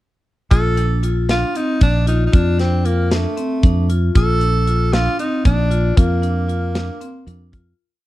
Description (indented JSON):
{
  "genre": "progressive instrumental, band music in an uneven meter",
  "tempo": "231 BPM (eighths)",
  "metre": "7/8",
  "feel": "straight",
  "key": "Bb major",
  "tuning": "A4 = 440 Hz",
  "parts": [
    { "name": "bright tenor saxophone", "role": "melody", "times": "0.5-7.5 s", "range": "A3 to A4", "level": "-22 LUFS", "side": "right 1 dB", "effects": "digital delay" },
    { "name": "vibraphone with medium hard mallets", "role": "arpeggios", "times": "0.5-7.7 s", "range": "C4 to F4", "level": "-24 LUFS", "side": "left 4 dB", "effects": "none" },
    { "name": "fingered electric bass", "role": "bass", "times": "0.5-7.7 s", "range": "Bb1 to F2", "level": "-17 LUFS", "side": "equal", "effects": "none" },
    { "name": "tight metal drum kit", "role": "drums", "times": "0.5-7.7 s", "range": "hi-hat, kick drum, snare drum", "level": "-16 LUFS", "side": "equal", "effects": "none" }
  ],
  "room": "little or no reverb",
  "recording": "dark, warm production",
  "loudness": "-14 LUFS",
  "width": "side -16 dB against mid",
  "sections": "0.5-7.8 A section",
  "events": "fade-out 6.0-7.8",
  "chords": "0.5 Bbmaj7"
}